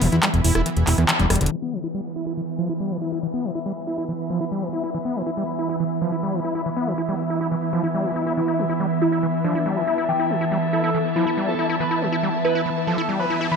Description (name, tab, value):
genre	psychedelic trance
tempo	140 BPM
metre	4/4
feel	straight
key	E minor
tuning	A4 = 440 Hz
part	evolving wavetable pad	sustained chords	0.0-13.6 s	E3	-26 LUFS	right 2 dB	ensemble chorus, built-in reverb
part	overdriven acid bass	riff	0.0-13.6 s	D3 to E4	-26 LUFS	moving between left 5 dB and right 5 dB	distortion, auto-pan, digital delay
part	fat analog bass	bass	0.0-1.5 s	E1 to E2	-19 LUFS	equal	none
part	garage drum kit	drums	0.0-1.5 s	handclaps, hi-hat, rim click	-22 LUFS	equal	none
part	muted studio string section	texture	0.0-13.6 s	B3 to B5	-28 LUFS	left 2 dB	none
part	downlifter and riser	sound effects	1.7-4.9, 12.8-13.6 s	none	-43 LUFS	right 1 dB	none
part	overdriven synth lead	melody	8.4-13.6 s	D4 to B4	-25 LUFS	equal	chorus, phaser, digital delay
room	moderate digital room reverb, RT60 1.2 s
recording	low-pass filter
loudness	-20 LUFS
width	side -5 dB against mid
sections	0.0-1.5 A section; 1.5-13.6 B section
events	band accent 1.1; drum fill 1.3; filter sweep on acid bass 1.5-13.6; filter sweep 1.5-13.6; riser 12.8-13.6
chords	0.0 E5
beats	0.23 0.66 1.09 | 1.52 1.95 2.37 2.80 | 3.23 3.66 4.09 4.52 | 4.95 5.37 5.80 6.23 | 6.66 7.09 7.52 7.95 | 8.37 8.80 9.23 9.66 | 10.09 10.52 10.95 11.37 | 11.80 12.23 12.66 13.09 | 13.52